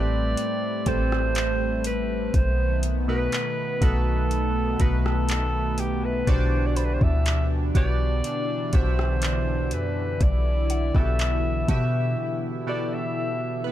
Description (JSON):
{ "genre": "contemporary R&B", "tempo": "61 BPM", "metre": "4/4", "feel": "straight", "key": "E minor", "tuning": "A4 = 439 Hz", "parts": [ { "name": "breathy alto saxophone", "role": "melody", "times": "0.0-13.7 s", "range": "G4 to E5", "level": "-29 LUFS", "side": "equal", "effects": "digital delay" }, { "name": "warm analog keys", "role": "accompaniment", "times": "0.0-13.7 s", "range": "A2 to E5", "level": "-30 LUFS", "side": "right 1 dB", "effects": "chorus" }, { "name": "chorused pulse-width pad", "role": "sustained chords", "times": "0.0-13.7 s", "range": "D3 to E4", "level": "-30 LUFS", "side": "left 1 dB", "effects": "sidechain pumping" }, { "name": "clean 808-style bass", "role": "bass", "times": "0.0-12.2 s", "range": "A1 to B2", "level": "-24 LUFS", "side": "equal", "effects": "none" }, { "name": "mallet-like synth pluck", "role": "texture", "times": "0.0-13.7 s", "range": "F#5 to B5", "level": "-43 LUFS", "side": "equal", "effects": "none" }, { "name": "smooth R&B drum kit", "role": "drums", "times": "0.4-11.9 s", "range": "handclaps, hi-hat, kick drum, rim click", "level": "-25 LUFS", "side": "equal", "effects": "none" } ], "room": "digital ambience", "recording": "dark, warm production", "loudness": "-22 LUFS", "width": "side -12 dB against mid", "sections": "0.0-13.7 A section", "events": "break 12.2-13.7", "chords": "0.0 Am7; 2.3 B7; 6.3 Em7/B" }